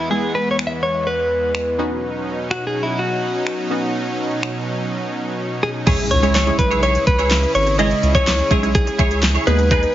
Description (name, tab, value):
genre	dance-pop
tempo	125 BPM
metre	4/4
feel	straight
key	C# minor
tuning	A4 = 436 Hz
part	direct-recorded clean electric guitar	melody	0.0-9.9 s	E4 to E5	-20 LUFS	left 1 dB	spring reverb, ping-pong delay
part	glassy wavetable pluck	accompaniment	0.0-9.9 s	G#3 to C#5	-24 LUFS	right 1 dB	chorus, sidechain pumping
part	supersaw pad	sustained chords	0.0-9.9 s	E2 to B4	-25 LUFS	right 1 dB	sidechain pumping
part	pop drum kit	drums	0.6-9.9 s	crash cymbal, finger snaps, handclaps, hi-hat, kick drum, snare drum	-19 LUFS	equal	none
part	direct-recorded clean electric guitar	riff	5.9-9.9 s	D#4 to C#5	-24 LUFS	right 3 dB	ensemble chorus
part	impact	sound effects	5.9-7.8 s	none	-29 LUFS	equal	none
part	round analog bass	bass	6.1-9.9 s	G#1 to D#2	-20 LUFS	equal	sidechain pumping
room	moderate studio reverb, RT60 0.6 s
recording	heavily compressed radio sound, nothing above 7.5 kHz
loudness	-16 LUFS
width	side -12 dB against mid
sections	0.0-5.9 A section; 5.9-9.9 B section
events	silent gap 5.4-5.9; impact 5.9-7.8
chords	0.0 E; 1.8 Badd9; 5.9 C#m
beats	| 0.11 0.59 1.07 1.55 | 2.03 2.51 2.99 3.47 | 3.95 4.43 4.91 5.39 | 5.87 6.35 6.83 7.31 | 7.79 8.27 8.75 9.23 | 9.71